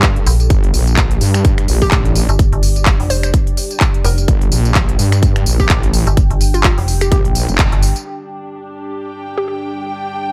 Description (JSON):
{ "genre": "bass house", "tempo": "127 BPM", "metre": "4/4", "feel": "swing 57% on 16ths", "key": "G minor", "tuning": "A4 = 441 Hz", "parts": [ { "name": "deep dark ambient pad", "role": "sustained chords", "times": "0.0-10.3 s", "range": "G3 to G5", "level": "-30 LUFS", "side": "equal", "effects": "chorus, built-in reverb, sidechain pumping" }, { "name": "wobble bass", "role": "bass", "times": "0.0-7.7 s", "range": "F1 to G2", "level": "-18 LUFS", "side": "equal", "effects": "chorus, overdrive, sidechain pumping" }, { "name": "big-room dance drum kit", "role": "drums", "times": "0.0-8.0 s", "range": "finger snaps, handclaps, hi-hat, tambourine", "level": "-22 LUFS", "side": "equal", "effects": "low-pass filter on hats, small room ambience, low-pass filter on perc, low-pass filter on snare" }, { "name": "electronic kick drum", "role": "drums", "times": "0.0-7.7 s", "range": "none", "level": "-16 LUFS", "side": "equal", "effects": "small room ambience" }, { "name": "metallic FM bass", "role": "bass", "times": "0.3-7.9 s", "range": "F1 to Bb1", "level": "-17 LUFS", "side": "equal", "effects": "sidechain pumping" }, { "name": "hollow square pluck", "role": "melody", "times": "1.8-9.6 s", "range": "F4 to C5", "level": "-25 LUFS", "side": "equal", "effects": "chorus, dub echo" }, { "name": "dark studio string section", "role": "texture", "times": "8.1-10.3 s", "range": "D4 to G5", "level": "-27 LUFS", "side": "equal", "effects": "sidechain pumping" } ], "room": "digital ambience", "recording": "none", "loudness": "-14 LUFS", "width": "mono", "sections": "0.0-8.1 A section; 8.1-10.3 B section", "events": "drop 0.0-8.1; band accent 7.6", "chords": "0.0 G5" }